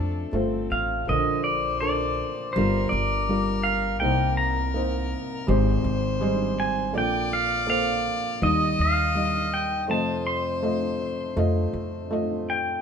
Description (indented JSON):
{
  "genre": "acoustic folk-pop ballad",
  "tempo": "82 BPM",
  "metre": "4/4",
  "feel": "straight",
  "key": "Bb major",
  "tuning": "A4 = 441 Hz",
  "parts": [
    { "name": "pedal steel guitar", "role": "melody", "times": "0.0-12.8 s", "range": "A4 to C6", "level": "-26 LUFS", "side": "right 1 dB", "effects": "none" },
    { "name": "warm violin", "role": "second line", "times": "0.0-12.4 s", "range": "C4 to Eb5", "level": "-32 LUFS", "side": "left 3 dB", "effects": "none" },
    { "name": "felt-muted upright piano", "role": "accompaniment", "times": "0.0-12.8 s", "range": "F1 to Eb5", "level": "-26 LUFS", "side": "equal", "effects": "none" },
    { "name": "upright bass", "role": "bass", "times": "0.0-12.8 s", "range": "G1 to F2", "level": "-29 LUFS", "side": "equal", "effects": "none" }
  ],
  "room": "light reverb",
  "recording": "minimal, uncompressed stereo recording",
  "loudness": "-22 LUFS",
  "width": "side -7 dB against mid",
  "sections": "0.0-1.1 A section; 1.1-12.8 B section",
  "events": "none",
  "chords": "0.0 F; 1.1 Bbmaj7; 2.6 Gm7; 4.0 Cm7; 5.5 Abmaj7; 6.9 Bbmaj7; 8.4 Eb; 9.9 F7"
}